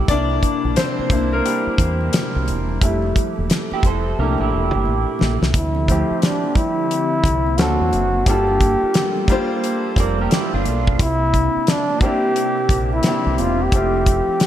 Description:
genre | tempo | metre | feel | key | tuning
R&B, neo-soul | 88 BPM | 4/4 | swing 62% on 16ths | unclear | A4 = 436 Hz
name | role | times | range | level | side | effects
electric guitar through a small old amp | second line | 0.0-5.4, 10.0-11.0 s | D4 to D5 | -26 LUFS | right 6 dB | analog chorus
clear concert grand piano | accompaniment | 0.0-14.5 s | F3 to D5 | -23 LUFS | left 1 dB | lush chorus
hollow soft pad | sustained chords | 0.0-14.5 s | Bb2 to A4 | -27 LUFS | equal | ensemble chorus
deep dub fingered electric bass | bass | 0.0-14.3 s | E1 to E2 | -21 LUFS | equal | none
damped 70s drum kit | drums | 0.1-14.5 s | hi-hat, kick drum, snare drum | -19 LUFS | equal | gated reverb
congas | percussion | 0.3-13.9 s | none | -34 LUFS | right 3 dB | none
breathy trombone | melody | 5.6-14.5 s | D4 to G4 | -20 LUFS | equal | ping-pong delay
room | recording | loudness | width
moderate plate reverb, RT60 3.2 s | bright 1980s-style digital production | -16 LUFS | side -11 dB against mid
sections
0.0-5.5 A section; 5.5-14.5 B section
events
grand piano solo 0.0-5.5; drum fill 4.2-5.5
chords
0.1 C9; 2.8 Fmaj9; 4.2 C13; 5.5 Dm11; 7.6 D7b13; 8.3 Gm9; 11.0 C9; 13.7 Fmaj9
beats
| 0.08 0.77 1.45 2.13 | 2.81 3.49 4.17 4.86 | 5.54 6.22 6.90 7.58 | 8.27 8.95 9.63 10.31 | 10.99 11.68 12.36 13.04 | 13.72 14.40

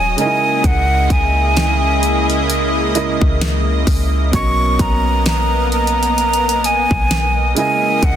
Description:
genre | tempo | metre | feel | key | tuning
contemporary R&B | 65 BPM | 4/4 | swing 58% on 16ths | C# dorian | A4 = 439 Hz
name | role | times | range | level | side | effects
breathy hollow jazz flute | melody | 0.0-8.2 s | F#5 to C#6 | -17 LUFS | equal | ping-pong delay
clear baby grand piano | accompaniment | 0.0-8.2 s | B2 to D#5 | -23 LUFS | right 5 dB | none
lush unison pad | sustained chords | 0.0-8.2 s | C#3 to D#5 | -20 LUFS | equal | chorus, sidechain pumping
soft 808-style bass | bass | 0.0-8.2 s | D#1 to C#2 | -18 LUFS | equal | none
pop drum kit | drums | 0.2-8.2 s | hi-hat, kick drum, snare drum | -19 LUFS | equal | none
room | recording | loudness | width
little or no reverb | dense, heavily limited modern master | -13 LUFS | side -10 dB against mid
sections
0.0-8.2 A section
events
none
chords
0.2 C#m69; 4.3 Bmaj7; 7.6 C#m69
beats
| 0.64 1.56 2.49 3.41 | 4.33 5.26 6.18 7.10 | 8.03

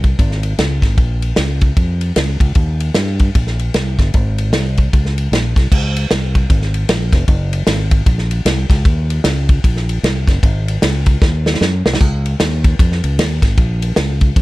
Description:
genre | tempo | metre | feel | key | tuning
uptempo gospel | 152 BPM | 4/4 | swing 62% on 8ths | Db major | A4 = 439 Hz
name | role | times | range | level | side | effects
fingered electric bass | bass | 0.0-14.4 s | F1 to G2 | -17 LUFS | equal | none
warm soul drum kit | drums | 0.0-14.4 s | crash cymbal, kick drum, ride cymbal, snare drum, splash cymbal | -14 LUFS | equal | none
room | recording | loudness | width
little or no reverb | none | -13 LUFS | side -19 dB against mid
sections
0.0-5.7 A section; 5.7-14.4 A section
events
drum fill 11.2-12.0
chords
none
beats
0.19 0.59 | 0.98 1.38 1.77 2.17 | 2.56 2.96 3.35 3.75 | 4.14 4.53 4.93 5.32 | 5.71 6.11 6.50 6.89 | 7.28 7.68 8.07 8.46 | 8.86 9.25 9.64 10.03 | 10.43 10.82 11.21 11.61 | 12.00 12.40 12.79 13.18 | 13.58 13.97 14.37

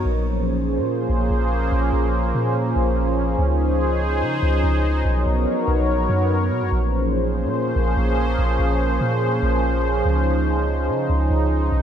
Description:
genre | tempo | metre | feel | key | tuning
hip hop | 144 BPM | 4/4 | half-time | Bb minor | A4 = 440 Hz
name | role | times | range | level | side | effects
sweeping resonant pad | sustained chords | 0.0-11.8 s | F3 to C#5 | -21 LUFS | equal | chorus
soft 808-style bass | bass | 0.0-11.8 s | Bb1 to Db3 | -21 LUFS | equal | none
room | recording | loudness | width
light reverb | none | -18 LUFS | side -9 dB against mid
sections
0.0-11.8 A section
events
none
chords
0.0 Bbm9; 3.4 Dbmaj9; 5.0 Bmaj9; 6.7 Bbm9; 10.0 Dbmaj9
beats
| 0.05 0.46 0.88 1.30 | 1.71 2.13 2.55 2.96 | 3.38 3.80 4.21 4.63 | 5.05 5.46 5.88 6.30 | 6.71 7.13 7.55 7.96 | 8.38 8.80 9.21 9.63 | 10.05 10.46 10.88 11.30 | 11.71

